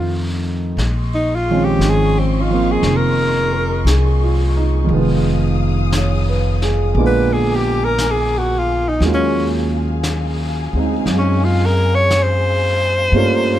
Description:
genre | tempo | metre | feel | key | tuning
jazz ballad | 58 BPM | 4/4 | swing 69% on 8ths | Bb minor | A4 = 441 Hz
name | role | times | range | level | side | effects
breathy alto saxophone | melody | 0.0-13.6 s | C4 to Db5 | -18 LUFS | left 1 dB | none
warm upright piano | accompaniment | 0.0-13.6 s | D3 to Db5 | -20 LUFS | right 3 dB | none
upright bass | bass | 0.0-13.6 s | F1 to G2 | -18 LUFS | equal | none
warm studio string section | sustained chords | 0.8-13.6 s | G4 to Eb6 | -28 LUFS | left 5 dB | none
vintage brush drum kit | drums | 0.8-13.6 s | brushed snare drum, hi-hat, snare drum | -28 LUFS | left 1 dB | none
room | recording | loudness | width
light reverb | close, detailed microphones | -14 LUFS | side -12 dB against mid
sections
0.8-13.6 A section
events
alto saxophone solo 0.8-13.6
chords
0.0 F7; 0.8 Bbm11; 4.9 Fm7b5; 7.0 Bb7b9; 9.0 Ebm11

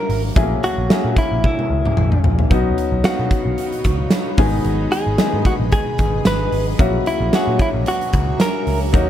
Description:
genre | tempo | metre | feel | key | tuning
1980s-style pop | 112 BPM | 4/4 | swing 55% on 16ths | unclear | A4 = 441 Hz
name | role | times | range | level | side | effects
direct-recorded clean electric guitar | melody | 0.0-8.8 s | Fb4 to Cb5 | -22 LUFS | equal | ping-pong delay, plate reverb
clear concert grand piano | accompaniment | 0.0-9.1 s | Eb3 to F5 | -23 LUFS | left 3 dB | none
vintage muted picked electric bass | bass | 0.1-9.1 s | Ab1 to B2 | -21 LUFS | equal | none
big rock drum kit | drums | 0.1-9.1 s | hi-hat, kick drum, snare drum, tambourine, toms | -19 LUFS | equal | none
granular cloud pad | sustained chords | 3.4-9.1 s | F#4 to B5 | -30 LUFS | right 1 dB | built-in reverb
room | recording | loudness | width
light reverb | none | -15 LUFS | side -11 dB against mid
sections
0.0-9.1 A section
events
drum fill 1.4-2.5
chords
0.0 Gb7; 2.5 Badd9; 4.4 Abm; 6.8 Gb7/Bb

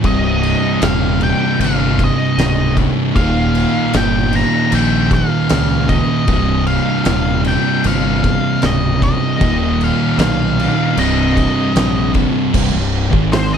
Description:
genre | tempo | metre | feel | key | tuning
stoner and doom metal | 77 BPM | 4/4 | straight | C phrygian | A4 = 440 Hz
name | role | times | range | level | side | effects
thick fuzz guitar | riff | 0.0-13.6 s | C2 to Ab3 | -19 LUFS | left 10 dB | distortion
thick fuzz guitar | riff | 0.0-13.6 s | C2 to Ab3 | -18 LUFS | right 10 dB | distortion
fuzz fingered electric bass | bass | 0.0-13.6 s | C1 to Db2 | -19 LUFS | equal | overdrive
oversized low-tuned drum kit | drums | 0.0-13.5 s | crash cymbal, hi-hat, kick drum, snare drum | -20 LUFS | equal | none
octave-fuzz lead guitar | melody | 0.1-13.6 s | C5 to Bb5 | -21 LUFS | left 1 dB | wah, distortion, slapback echo
room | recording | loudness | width
studio ambience | none | -13 LUFS | side -8 dB against mid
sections
0.0-12.5 A section; 12.5-13.6 B section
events
lead electric guitar solo 12.5-13.6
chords
0.0 Cm; 3.2 Eb; 6.3 Cm; 9.4 Eb5; 11.0 Cm

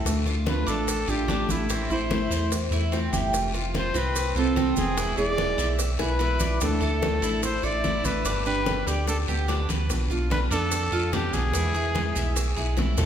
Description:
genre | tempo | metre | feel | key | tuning
latin, Cuban son and guajira | 146 BPM | 4/4 | straight | unclear | A4 = 440 Hz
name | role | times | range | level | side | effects
picked steel-string acoustic guitar | accompaniment | 0.0-13.1 s | B2 to G4 | -32 LUFS | left 2 dB | none
Cuban tres | arpeggios | 0.0-13.1 s | C4 to E5 | -32 LUFS | right 2 dB | none
round analog bass | bass | 0.0-13.1 s | E1 to F2 | -27 LUFS | equal | none
bongos | percussion | 0.1-13.1 s | none | -36 LUFS | left 5 dB | none
congas | percussion | 0.1-13.1 s | none | -34 LUFS | equal | none
guiro | percussion | 0.1-13.1 s | none | -38 LUFS | left 6 dB | none
maracas | percussion | 0.1-13.1 s | none | -37 LUFS | right 5 dB | none
breathy trumpet | melody | 0.5-12.8 s | E4 to D5 | -29 LUFS | left 1 dB | none
nylon-string guitar | second line | 0.5-12.8 s | A3 to G#4 | -32 LUFS | right 6 dB | none
room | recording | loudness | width
wet recital hall reverb, RT60 1.6 s | recorded in a church or concert hall | -22 LUFS | side -9 dB against mid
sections
0.0-13.1 A section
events
drum fill 6.0-6.6, 12.8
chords
0.1 Dm; 1.7 Am; 3.3 Fsus2; 5.0 E; 6.6 Dmadd9; 8.3 G; 9.9 Bdim; 11.5 E

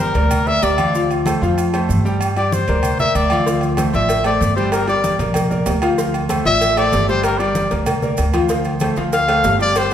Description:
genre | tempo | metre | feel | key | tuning
latin, salsa | 191 BPM | 4/4 | straight | D minor | A4 = 440 Hz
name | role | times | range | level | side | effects
warm trumpet | melody | 0.0-9.9 s | Bb4 to F5 | -18 LUFS | left 2 dB | none
bright concert grand piano | accompaniment | 0.0-9.9 s | F3 to G5 | -21 LUFS | left 1 dB | none
upright bass | bass | 0.0-9.9 s | G1 to G2 | -20 LUFS | right 1 dB | none
agogo bells and timbales | percussion | 0.1-9.9 s | none | -25 LUFS | right 2 dB | none
maracas | percussion | 0.1-9.9 s | none | -35 LUFS | right 6 dB | none
congas | percussion | 0.2-9.9 s | none | -26 LUFS | equal | none
cowbell | percussion | 3.5-9.9 s | none | -27 LUFS | left 2 dB | none
room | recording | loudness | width
wet recital hall reverb, RT60 1.6 s | recorded in a church or concert hall | -15 LUFS | side -9 dB against mid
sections
0.0-9.9 A section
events
trumpet solo 0.0-9.9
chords
0.0 Gm; 0.9 Dm7; 2.2 Gm; 3.5 Dm7; 4.7 Gm; 6.0 Dm7; 7.2 Gm; 8.5 Dm7

